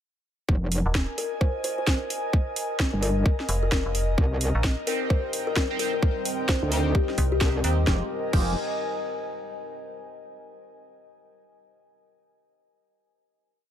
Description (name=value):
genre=bass house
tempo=130 BPM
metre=4/4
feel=swing 61% on 16ths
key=F minor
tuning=A4 = 440 Hz
part: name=metallic wobble bass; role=bass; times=0.5-8.5 s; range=F1 to D2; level=-25 LUFS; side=equal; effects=chorus, sidechain pumping
part: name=electronic kick drum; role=drums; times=0.5-8.4 s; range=none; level=-23 LUFS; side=equal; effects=none
part: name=airy breathy pad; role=texture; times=0.5-9.7 s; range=Bb4 to Ab5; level=-33 LUFS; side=equal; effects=chorus, sidechain pumping
part: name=garage drum kit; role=drums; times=0.7-8.4 s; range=crash cymbal, hi-hat, snare drum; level=-30 LUFS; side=right 1 dB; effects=overdrive
part: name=metallic FM bass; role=bass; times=0.9-7.9 s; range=Eb1 to Eb2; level=-25 LUFS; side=equal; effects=tube saturation, sidechain pumping
part: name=kalimba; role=melody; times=1.2-7.6 s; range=G4 to C5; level=-32 LUFS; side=left 4 dB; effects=ping-pong delay
part: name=deep dark ambient pad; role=sustained chords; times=5.4-8.1 s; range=G3 to C5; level=-36 LUFS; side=right 1 dB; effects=chorus, built-in reverb, sidechain pumping
part: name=band-passed chord stab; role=stabs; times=4.9-8.5 s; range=Ab3 to G4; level=-34 LUFS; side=right 5 dB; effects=phaser, analog chorus, sidechain pumping, ping-pong delay
room=light reverb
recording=none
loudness=-23 LUFS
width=side -10 dB against mid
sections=0.5-7.9 drop; 7.9-9.7 final chord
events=drop 0.5-7.9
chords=0.5 Fm; 4.2 Cm; 7.9 Fmadd9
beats=| 0.49 0.95 1.41 1.87 | 2.33 2.79 3.25 3.72 | 4.18 4.64 5.10 5.56 | 6.03 6.49 6.95 7.41 | 7.87 8.33 8.79 9.26